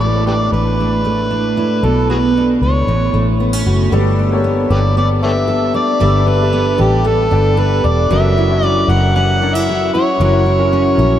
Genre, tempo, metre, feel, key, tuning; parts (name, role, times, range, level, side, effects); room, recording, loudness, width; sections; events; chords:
pop; 115 BPM; 4/4; straight; A4 = 441 Hz
overdriven harmonica; melody; 0.0-11.2 s; F#4 to F#5; -17 LUFS; equal; analog delay
fingerpicked steel-string acoustic guitar; accompaniment; 0.0-11.2 s; A2 to A#4; -17 LUFS; right 2 dB; analog chorus
vintage muted fingered electric bass; bass; 0.0-11.2 s; E1 to C#2; -16 LUFS; equal
clear concert grand piano; accompaniment; 3.9-11.2 s; Bb3 to F#5; -22 LUFS; left 4 dB; lush chorus
wet huge ambient reverb, RT60 8.2 s; dreamy mix soaked in reverb; -12 LUFS; side -11 dB against mid
0.0-3.9 A section; 3.9-11.2 B section
0.0 Asus4; 1.8 Bm; 2.9 A6; 3.9 Gadd9; 8.1 F#7